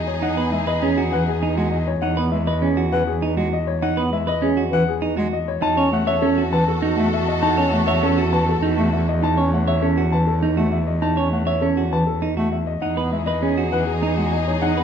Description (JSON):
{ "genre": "classical, minimalist pattern music", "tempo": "200 BPM", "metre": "6/4", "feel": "straight", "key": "E major", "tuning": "A4 = 440 Hz", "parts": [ { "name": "warm baby grand piano", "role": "melody", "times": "0.0-14.8 s", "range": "G#4 to A5", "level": "-25 LUFS", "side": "left 8 dB", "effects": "none" }, { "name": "clear symphonic string section", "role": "sustained chords", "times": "0.0-1.8, 5.6-9.0, 12.8-14.8 s", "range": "D#4 to A4", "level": "-27 LUFS", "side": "left 1 dB", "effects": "none" }, { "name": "clear cello", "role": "bass", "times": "0.0-14.8 s", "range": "E2", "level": "-23 LUFS", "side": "right 1 dB", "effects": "none" }, { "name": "clean electric guitar", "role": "arpeggios", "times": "0.2-14.8 s", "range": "C#4 to C#5", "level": "-23 LUFS", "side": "right 6 dB", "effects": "none" }, { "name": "clear bass clarinet", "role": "accompaniment", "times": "0.4-14.8 s", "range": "E3 to C#4", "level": "-24 LUFS", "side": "left 1 dB", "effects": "none" } ], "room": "moderate recital hall reverb, RT60 1.7 s", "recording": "dark, warm production", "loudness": "-18 LUFS", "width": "side -8 dB against mid", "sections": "0.0-14.8 A section", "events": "none", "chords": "0.0 Emaj9; 5.6 F#m7/E; 12.8 Emaj9", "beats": "| 0.23 0.53 0.82 1.12 1.43 1.73 | 2.02 2.33 2.62 2.92 3.23 3.52 | 3.83 4.12 4.42 4.72 5.03 5.33 | 5.62 5.92 6.22 6.53 6.83 7.12 | 7.42 7.72 8.03 8.32 8.62 8.93 | 9.22 9.53 9.82 10.12 10.43 10.72 | 11.03 11.32 11.62 11.93 12.22 12.53 | 12.82 13.12 13.43 13.72 14.03 14.32 | 14.62" }